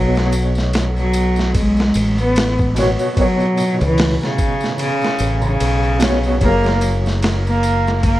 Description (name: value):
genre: trip hop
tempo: 74 BPM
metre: 4/4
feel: swing 58% on 16ths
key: unclear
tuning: A4 = 439 Hz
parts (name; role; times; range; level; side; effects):
- rich cello; melody; 0.0-8.2 s; C#3 to B3; -18 LUFS; equal; tape echo
- dark upright piano; accompaniment; 0.0-8.2 s; B2 to C#5; -22 LUFS; equal; tremolo
- fingered electric bass with an envelope filter; bass; 0.0-8.2 s; F#1 to C#2; -18 LUFS; equal; none
- dusty soul sampler-style drum kit; drums; 0.2-8.2 s; hi-hat, kick drum, ride cymbal, snare drum; -22 LUFS; equal; overdrive
- tambourine and triangle; percussion; 0.2-8.2 s; none; -36 LUFS; left 3 dB; none
room: small room ambience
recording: worn, warbling old tape, cassette tape, warbly pitch drift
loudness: -14 LUFS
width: side -15 dB against mid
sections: 0.0-8.2 A section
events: none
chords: 0.0 Bsus2; 6.4 F#add9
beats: 0.74 1.55 2.36 | 3.17 3.98 4.79 5.60 | 6.41 7.22 8.04